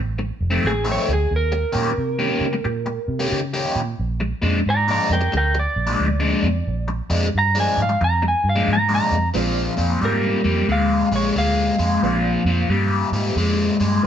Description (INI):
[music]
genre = blues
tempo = 90 BPM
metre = 4/4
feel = swing 64% on 8ths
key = Bb mixolydian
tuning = A4 = 438 Hz
[part]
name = vintage muted fingered electric bass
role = bass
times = 0.0-14.1 s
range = F1 to Db3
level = -22 LUFS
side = right 1 dB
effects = none
[part]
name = biting overdriven guitar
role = riff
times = 0.2-14.1 s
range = F2 to G4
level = -21 LUFS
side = left 2 dB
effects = phaser
[part]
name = lightly driven lead guitar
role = melody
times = 0.7-12.7 s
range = Ab4 to Bb5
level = -22 LUFS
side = right 1 dB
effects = none
[part]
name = honky-tonk upright piano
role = accompaniment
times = 9.3-14.1 s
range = Ab3 to F4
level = -27 LUFS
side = right 4 dB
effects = none
[sound]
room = moderate stone room reverb, RT60 1.0 s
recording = band playing live in one room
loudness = -18 LUFS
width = side -9 dB against mid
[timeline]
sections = 0.0-9.4 A section; 9.4-14.1 B section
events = lead electric guitar solo 0.0-9.4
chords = 0.0 F7; 1.3 Eb7; 4.0 Bb7